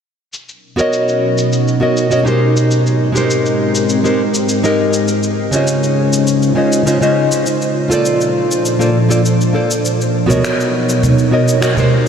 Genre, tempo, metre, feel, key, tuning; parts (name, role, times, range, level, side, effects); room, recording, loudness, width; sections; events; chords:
sunset chillout; 101 BPM; 4/4; straight; A4 = 440 Hz
ethereal airy pad; sustained chords; 1.0-12.1 s; Ab2 to C#5; -15 LUFS; equal; ensemble chorus, built-in reverb
electronic cabasa, congas and finger snaps; drums; 0.3-11.9 s; -22 LUFS; right 1 dB; low-pass filter on perc, low-pass filter on snare, low-pass filter on room
nylon-string guitar; accompaniment; 0.8-12.1 s; Db3 to D#5; -15 LUFS; equal; auto-pan, tape echo
wet huge ambient reverb, RT60 7.8 s; dreamy mix soaked in reverb; -12 LUFS; side -7 dB against mid
0.3-12.1 A section
filter sweep on drum 0.3-12.1; filter sweep on ambient pad 0.3-12.1
0.3 Bmaj9; 2.4 Abmaj9; 5.1 Dbmaj9; 7.5 Bbmaj9; 9.8 Bmaj9